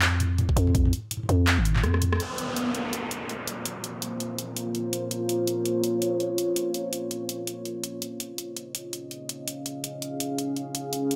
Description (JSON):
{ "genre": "half-time drum and bass", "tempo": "165 BPM", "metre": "4/4", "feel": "swing 58% on 16ths, half-time", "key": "Bb minor", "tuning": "A4 = 440 Hz", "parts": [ { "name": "growling 808-style bass", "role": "bass", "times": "0.0-2.2 s", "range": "Ab1 to F2", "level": "-25 LUFS", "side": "equal", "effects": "tube saturation" }, { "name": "drum and bass drum kit", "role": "drums", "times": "0.0-11.2 s", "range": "handclaps, hi-hat, rim click, toms", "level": "-31 LUFS", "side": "equal", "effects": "overdrive" }, { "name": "electronic kick drum", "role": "drums", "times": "0.5-0.8 s", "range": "none", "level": "-27 LUFS", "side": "equal", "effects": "overdrive" }, { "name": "deep dark ambient pad", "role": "sustained chords", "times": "3.3-11.2 s", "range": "Bb3 to F5", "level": "-32 LUFS", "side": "equal", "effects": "chorus, built-in reverb, sidechain pumping" }, { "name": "downlifter", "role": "sound effects", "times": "2.2-5.1 s", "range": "none", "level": "-34 LUFS", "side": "equal", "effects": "none" } ], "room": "wet echo chamber reverb, RT60 1.3 s, digital ambience", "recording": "none", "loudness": "-28 LUFS", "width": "mono", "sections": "0.0-2.2 A section; 2.2-11.2 B section", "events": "kick drops out 1.5-2.2; drum fill 1.8-2.2; band accent 2.1", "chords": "0.0 Db (rootless); 2.2 Bbm; 8.0 Db" }